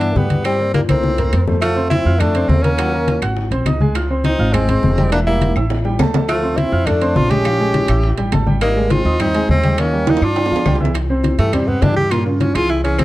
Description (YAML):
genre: Afro-Cuban jazz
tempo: 206 BPM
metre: 4/4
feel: straight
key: unclear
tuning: A4 = 444 Hz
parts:
  - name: bright tenor saxophone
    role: melody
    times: 0.0-13.0 s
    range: G3 to G4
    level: -19 LUFS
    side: equal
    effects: plate reverb
  - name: clear trombone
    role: second line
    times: 0.0-10.8 s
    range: F3 to D4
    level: -24 LUFS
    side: left 1 dB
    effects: none
  - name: warm baby grand piano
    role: accompaniment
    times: 0.0-13.0 s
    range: Bb2 to Gb6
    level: -22 LUFS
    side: equal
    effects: none
  - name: upright bass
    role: bass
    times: 0.0-13.0 s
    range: E1 to G2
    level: -19 LUFS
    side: equal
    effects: none
  - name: bongos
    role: percussion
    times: 0.0-13.0 s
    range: none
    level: -27 LUFS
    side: left 5 dB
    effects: none
  - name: congas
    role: percussion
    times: 0.0-13.0 s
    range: none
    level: -20 LUFS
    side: left 1 dB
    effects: none
  - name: timbales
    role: percussion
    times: 0.0-13.0 s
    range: none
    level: -25 LUFS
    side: right 7 dB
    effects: none
  - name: claves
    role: percussion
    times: 0.4-13.0 s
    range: none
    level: -32 LUFS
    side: left 1 dB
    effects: none
room: light reverb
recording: dark, warm production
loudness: -14 LUFS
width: side -16 dB against mid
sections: 0.0-1.6 A section; 1.6-10.9 B section; 10.9-13.0 C section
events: drum fill 0.7-1.6, 5.6-6.3, 10.1-10.9; tenor saxophone solo 10.9-13.0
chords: 0.4 Gm; 1.0 Fadd11/C; 1.6 Fmaj7; 2.8 Ebm7; 3.4 Ab9; 4.0 Dbmaj9; 5.1 Edim; 5.7 A5; 6.3 Dm9; 7.5 Bbm7; 8.0 A5; 8.6 Abmaj9; 9.8 Eb7; 10.4 G5; 10.9 C; 12.1 Gm7b5